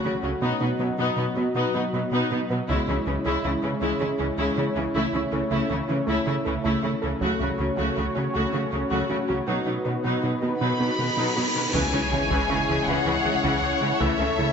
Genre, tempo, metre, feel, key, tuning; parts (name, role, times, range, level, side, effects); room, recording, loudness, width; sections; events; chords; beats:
cinematic, hybrid orchestral and electronic film score; 53 BPM (dotted quarters); 6/8; straight; C# minor; A4 = 441 Hz
rich studio viola section; accompaniment; 0.0-14.5 s; D#3 to F#4; -28 LUFS; left 1 dB
dark analog pad; sustained chords; 0.0-14.5 s; F#3 to D#5; -28 LUFS; left 1 dB; chorus
smooth synth bass; riff; 0.0-14.5 s; C#2 to B3; -31 LUFS; right 2 dB
rich symphonic cello section; bass; 0.0-14.5 s; B2 to C#3; -31 LUFS; right 2 dB
analog pluck; arpeggios; 0.1-14.5 s; C#3 to B4; -35 LUFS; right 4 dB
taiko ensemble; drums; 2.7-14.5 s; -34 LUFS; left 1 dB
cymbal swell and sub drop; sound effects; 10.6-14.0 s; -32 LUFS; equal
rich symphonic violin section; melody; 10.6-14.5 s; E5 to B5; -27 LUFS; left 2 dB
clear symphonic violin section; second line; 11.7-14.5 s; G#4 to C#5; -28 LUFS; left 1 dB
rich symphonic double bass section; bass; 11.7-14.5 s; C#2; -34 LUFS; right 2 dB
mellow French horn section; sustained chords; 11.8-14.5 s; G#3 to E4; -32 LUFS; left 5 dB
moderate scoring stage reverb, RT60 1.9 s; nothing above 7.9 kHz; -22 LUFS; side -6 dB against mid
0.0-11.7 A section; 11.7-14.5 B section
build-up 0.0-11.7; cymbal swell 10.6-11.7; impact 11.7-14.0
0.4 B; 2.7 C#m; 5.0 A/C#; 7.2 F#m/C#; 9.5 B; 11.7 C#m; 14.0 A/C#
| 0.42 1.56 | 2.69 3.82 | 4.95 6.08 | 7.22 8.35 | 9.48 10.61 | 11.74 12.88 | 14.01